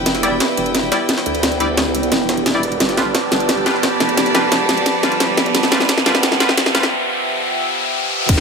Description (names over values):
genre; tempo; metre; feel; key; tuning
dark technical drum and bass; 175 BPM; 4/4; straight; unclear; A4 = 438 Hz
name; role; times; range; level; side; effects
deep dark ambient pad; sustained chords; 0.0-8.4 s; F3 to E5; -21 LUFS; right 2 dB; chorus, built-in reverb, sidechain pumping
growl bass; bass; 0.0-8.4 s; E1 to D2; -25 LUFS; equal; chorus, sidechain pumping
riser; sound effects; 2.0-8.3 s; none; -23 LUFS; right 1 dB; none
rich chamber string section; texture; 0.0-8.4 s; E4 to B5; -22 LUFS; right 1 dB; sidechain pumping
drum and bass drum kit; drums; 0.1-8.4 s; crash cymbal, hi-hat, snare drum; -18 LUFS; equal; overdrive
jungle sampler-style drum kit; drums; 0.1-8.4 s; hi-hat, ride cymbal, snare drum; -27 LUFS; equal; none
band-passed chord stab; stabs; 0.2-6.8 s; G3 to D5; -24 LUFS; left 2 dB; chorus, digital delay
electronic kick drum; drums; 8.3-8.4 s; none; -13 LUFS; equal; overdrive
room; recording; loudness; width
moderate plate reverb, RT60 2.3 s; high-pass filter; -14 LUFS; side -5 dB against mid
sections
0.0-8.3 A section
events
build-up 0.0-8.3; drum fill 0.0-6.9; filter sweep 0.0-8.3; riser 2.0-8.3; break 6.9-8.3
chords
0.0 Em7; 2.8 G7